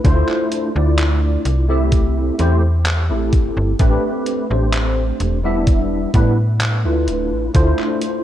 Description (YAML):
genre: vaporwave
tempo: 64 BPM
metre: 4/4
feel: straight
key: A minor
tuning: A4 = 440 Hz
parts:
  - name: tine electric piano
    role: accompaniment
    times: 0.0-8.2 s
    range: G3 to E5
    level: -19 LUFS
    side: equal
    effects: medium stereo tremolo, ensemble chorus, vintage 12-bit sampler grit, analog delay
  - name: slap-like FM bass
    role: bass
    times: 0.0-7.7 s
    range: D1 to A2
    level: -17 LUFS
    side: equal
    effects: tube saturation
  - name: detuned 8-bit digital drum machine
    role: drums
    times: 0.0-8.2 s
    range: handclaps, hi-hat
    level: -25 LUFS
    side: equal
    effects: none
  - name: electronic kick drum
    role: drums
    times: 0.0-7.7 s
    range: none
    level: -15 LUFS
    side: equal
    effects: none
room: light reverb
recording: cassette tape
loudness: -15 LUFS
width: side -12 dB against mid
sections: 0.0-8.2 A section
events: none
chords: 0.0 Dm9; 1.9 C6; 3.8 Am11; 5.7 Em7; 7.1 Dm9